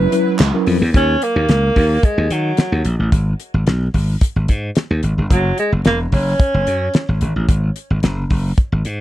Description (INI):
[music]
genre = early-eighties boogie funk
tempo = 110 BPM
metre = 4/4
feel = straight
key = unclear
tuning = A4 = 439 Hz
[part]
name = breathy alto saxophone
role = melody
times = 0.0-7.2 s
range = F#3 to B4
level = -19 LUFS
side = right 1 dB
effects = none
[part]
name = mellow tine electric piano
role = accompaniment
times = 0.0-0.8 s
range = F#3 to B4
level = -18 LUFS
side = left 1 dB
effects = medium stereo tremolo
[part]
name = lush unison pad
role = sustained chords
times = 0.0-0.9 s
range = F#3 to B4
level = -27 LUFS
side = left 1 dB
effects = chorus
[part]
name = slap bass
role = bass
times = 0.0-9.0 s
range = E1 to D#3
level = -17 LUFS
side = equal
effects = none
[part]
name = damped 70s drum kit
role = drums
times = 0.1-9.0 s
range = hi-hat, kick drum, snare drum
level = -16 LUFS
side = equal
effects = none
[part]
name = group handclap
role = percussion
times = 0.4-0.5 s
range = none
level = -25 LUFS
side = right 4 dB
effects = none
[sound]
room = little or no reverb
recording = dry, close 1970s-style studio recording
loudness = -14 LUFS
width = side -14 dB against mid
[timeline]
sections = 0.9-9.0 A section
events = none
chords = 0.0 F#7sus4; 0.9 D#m; 3.1 N.C.; 5.3 F#5; 7.2 F#sus2